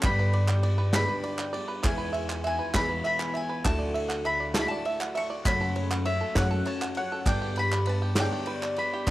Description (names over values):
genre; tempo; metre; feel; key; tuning
indie folk with a building arrangement; 66 BPM (dotted quarters); 6/8; straight; unclear; A4 = 440 Hz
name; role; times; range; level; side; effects
mandolin; melody; 0.0-9.1 s; E5 to C#6; -31 LUFS; left 2 dB; cassette tape
felt-muted upright piano; accompaniment; 0.0-9.1 s; F#1 to E5; -37 LUFS; right 3 dB; cassette tape
picked twelve-string acoustic guitar; accompaniment; 0.0-9.1 s; E2 to G#4; -36 LUFS; left 3 dB; cassette tape
bluegrass banjo; arpeggios; 0.0-9.1 s; D4 to G#5; -34 LUFS; right 3 dB; cassette tape
upright bass; bass; 0.0-9.1 s; D2 to G2; -28 LUFS; equal; none
unplugged drum kit; drums; 0.0-9.1 s; kick drum, ride cymbal, snare drum; -32 LUFS; equal; cassette tape
group handclap; percussion; 0.0-9.1 s; none; -33 LUFS; right 2 dB; none
room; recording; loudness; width
studio reverb; home recording on cassette; -25 LUFS; side -16 dB against mid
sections
0.0-9.1 A section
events
none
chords
0.0 G; 1.8 E; 3.6 Dadd9; 5.5 F#m; 7.3 G